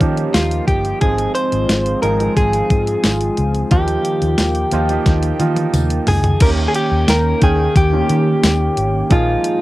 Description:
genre	1980s-style pop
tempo	89 BPM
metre	4/4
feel	straight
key	unclear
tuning	A4 = 440 Hz
part	direct-recorded clean electric guitar	melody	0.0-9.6 s	Eb4 to C5	-19 LUFS	left 1 dB	plate reverb
part	warm grand piano	accompaniment	0.0-9.6 s	Eb3 to G5	-23 LUFS	right 6 dB	cassette tape, plate reverb
part	chorused pulse-width pad	sustained chords	0.0-9.6 s	Eb3 to G5	-23 LUFS	equal	cassette tape, plate reverb
part	vintage muted fingered electric bass	bass	0.0-9.3 s	G1 to Eb3	-19 LUFS	equal	none
part	clean 12-bit digital drum machine	drums	0.0-9.6 s	crash cymbal, hi-hat, kick drum, snare drum, tambourine, toms	-16 LUFS	equal	overdrive, cassette tape
part	tambourine	percussion	0.3-8.6 s	none	-32 LUFS	left 9 dB	none
room	light reverb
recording	home recording on cassette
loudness	-13 LUFS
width	side -17 dB against mid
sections	0.0-6.4 A section; 6.4-9.6 B section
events	drum fill 5.1-6.4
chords	0.0 Ebadd9; 1.0 Ab6; 3.7 Ebadd9; 6.4 Eb7; 9.1 Bb7sus4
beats	0.34 | 1.02 1.69 2.37 3.04 | 3.71 4.39 5.06 5.74 | 6.41 7.09 7.76 8.43 | 9.11

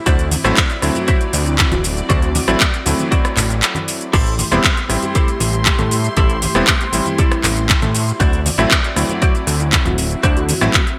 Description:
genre	nu-disco, nu disco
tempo	118 BPM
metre	4/4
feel	straight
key	unclear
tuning	A4 = 442 Hz
part	clear electric grand piano	accompaniment	0.0-10.8 s	F#3 to E4	-24 LUFS	equal	digital delay
part	muted symphonic string section	sustained chords	0.0-11.0 s	A3 to C6	-29 LUFS	equal	sidechain pumping
part	direct-recorded clean electric guitar	riff	0.1-10.9 s	E4 to E5	-25 LUFS	equal	lush chorus
part	fat analog bass	bass	0.1-10.7 s	D1 to A2	-21 LUFS	equal	none
part	electronic kick drum	drums	0.1-10.8 s	none	-19 LUFS	equal	none
part	house drum kit	drums	0.1-11.0 s	crash cymbal, handclaps, hi-hat, rim click, shaker	-20 LUFS	equal	gated reverb
part	congas	percussion	0.3-10.6 s	none	-29 LUFS	equal	none
part	soft octave-layered synth lead	melody	1.0-10.9 s	E4 to G4	-30 LUFS	equal	chorus, phaser, digital delay
room	light reverb, digital ambience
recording	bright 1980s-style digital production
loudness	-16 LUFS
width	mono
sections	0.0-11.0 A section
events	break 3.6-4.1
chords	0.1 D9; 4.1 Am7; 8.2 D9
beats	| 0.07 0.57 1.08 1.59 | 2.10 2.61 3.12 3.63 | 4.13 4.64 5.15 5.66 | 6.17 6.68 7.18 7.69 | 8.20 8.71 9.22 9.73 | 10.24 10.74

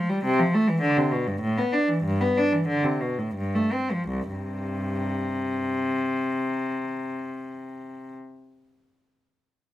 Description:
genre	classical, baroque-style suite movement for unaccompanied cello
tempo	79-107 BPM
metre	3/4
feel	rubato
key	C major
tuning	A4 = 440 Hz
part	rich cello	solo	0.0-8.1 s	C2 to D4	-23 LUFS	equal	none
room	light reverb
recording	minimal, uncompressed stereo recording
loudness	-23 LUFS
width	side -13 dB against mid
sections	0.0-4.1 A section; 4.1-8.4 B section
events	slowing down 0.0-4.1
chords	0.3 C; 1.4 A5; 2.0 C/G; 3.4 G9sus4; 4.1 C5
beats	| 0.25 0.82 1.41 | 2.03 2.68 3.35 | 4.09 4.81 5.53 | 6.25 6.98 7.71

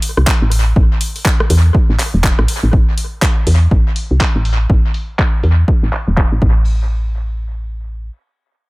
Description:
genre	deep house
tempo	122 BPM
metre	4/4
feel	swing 61% on 16ths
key	A minor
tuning	A4 = 440 Hz
part	deep house drum kit	drums	0.0-6.5 s	crash cymbal, handclaps, hi-hat, rim click	-20 LUFS	equal	low-pass filter on hats, low-pass filter on snare, low-pass filter on cymbals, tape echo
part	woody FM bass	bass	0.2-8.1 s	E1 to E2	-13 LUFS	equal	tube saturation, sidechain pumping
part	electronic kick drum	drums	0.3-6.5 s	none	-14 LUFS	equal	none
room	little or no reverb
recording	echo-heavy mix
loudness	-12 LUFS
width	side -23 dB against mid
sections	0.0-2.7 A section; 2.7-6.7 B section; 6.7-8.7 C section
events	drop 0.0-2.7; filter sweep on drum 2.7-6.7; filter sweep on FM bass 2.7-6.7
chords	none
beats	0.27 | 0.76 1.25 1.75 2.24 | 2.73 3.22 3.71 4.21 | 4.70 5.19 5.68 6.17 | 6.66 7.16 7.65

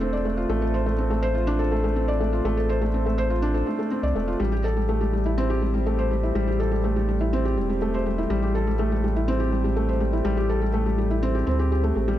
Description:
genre	piano and strings electronica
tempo	123 BPM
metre	4/4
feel	straight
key	unclear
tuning	A4 = 440 Hz
part	felt-muted upright piano	riff	0.0-12.2 s	G3 to D5	-24 LUFS	left 1 dB	ping-pong delay
part	warm sub bass	bass	0.0-12.2 s	E1 to D2	-25 LUFS	equal	none
room	light reverb, studio ambience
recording	none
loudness	-21 LUFS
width	side -13 dB against mid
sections	0.0-12.2 A section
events	none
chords	0.0 Dm7; 4.4 Am7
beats	0.01 | 0.49 0.98 1.47 1.96 | 2.45 2.93 3.42 3.91 | 4.40 4.88 5.37 5.86 | 6.35 6.84 7.32 7.81 | 8.30 8.79 9.28 9.76 | 10.25 10.74 11.23 11.71

